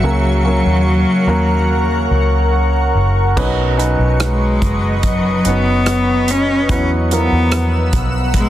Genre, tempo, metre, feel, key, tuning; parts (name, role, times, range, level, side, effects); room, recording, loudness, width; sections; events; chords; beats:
pop ballad; 72 BPM; 4/4; straight; B major; A4 = 440 Hz
clear cello; melody; 0.0-8.5 s; F#3 to C#4; -18 LUFS; left 2 dB
clear grand piano; accompaniment; 0.0-8.5 s; B2 to B4; -20 LUFS; right 1 dB
shimmering ambient pad; sustained chords; 0.0-8.5 s; B3 to E6; -21 LUFS; left 1 dB; chorus, built-in reverb
vintage muted fingered electric bass; bass; 0.0-8.5 s; F#1 to E2; -16 LUFS; equal
natural country drum kit; drums; 3.4-8.5 s; crash cymbal, hi-hat, kick drum, rim click; -20 LUFS; equal; soft clipping on snare
little or no reverb; dense, heavily limited modern master; -12 LUFS; side -13 dB against mid
0.0-3.4 A section; 3.4-8.5 B section
0.0 F#/C#; 3.4 Badd9; 6.7 Esus2
| 0.03 0.86 1.69 2.53 | 3.37 4.20 5.04 5.87 | 6.70 7.53 8.35